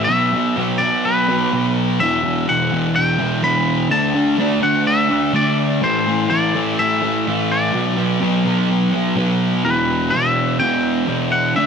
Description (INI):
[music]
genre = rock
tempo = 126 BPM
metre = 4/4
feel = straight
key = E minor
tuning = A4 = 442 Hz
[part]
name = twangy electric guitar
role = melody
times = 0.0-11.7 s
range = B4 to B5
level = -19 LUFS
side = left 1 dB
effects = analog delay
[part]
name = thick fuzz guitar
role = riff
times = 0.0-11.7 s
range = E2 to D4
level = -17 LUFS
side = equal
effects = distortion, wide subtle chorus
[sound]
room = moderate plate reverb, RT60 2.9 s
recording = none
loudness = -15 LUFS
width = side -6 dB against mid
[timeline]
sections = 0.0-9.7 A section; 9.7-11.7 B section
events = none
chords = 0.1 B5; 2.0 Emadd9; 3.9 D5; 5.8 Am; 7.7 Bm; 9.7 Em